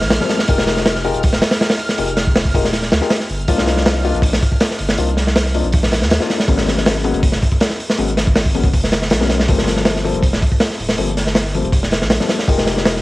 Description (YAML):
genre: drum and bass, jungle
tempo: 160 BPM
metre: 4/4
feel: straight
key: C minor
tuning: A4 = 440 Hz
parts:
  - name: saturated sub bass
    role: bass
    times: 0.0-13.0 s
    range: D1 to Eb2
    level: -21 LUFS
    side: equal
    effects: tube saturation
  - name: crunchy breakbeat drum kit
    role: drums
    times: 0.0-13.0 s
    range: hi-hat, kick drum, snare drum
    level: -15 LUFS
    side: equal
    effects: cassette tape
  - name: backwards swelling texture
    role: texture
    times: 0.0-3.5 s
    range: F6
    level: -29 LUFS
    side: right 3 dB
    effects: built-in reverb, cassette tape
  - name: dark concert grand piano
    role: stabs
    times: 0.2-13.0 s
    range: F3 to Bb4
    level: -22 LUFS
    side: left 4 dB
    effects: cassette tape, dub echo
room: light reverb, studio ambience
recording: home recording on cassette, vinyl crackle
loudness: -14 LUFS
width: side -18 dB against mid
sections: 0.0-3.5 A section; 3.5-13.0 A section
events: drop 0.0-3.5, 3.5-13.0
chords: 0.5 Fm11; 3.5 Cm11; 6.5 Abm11; 9.5 Gm11; 12.5 Fm11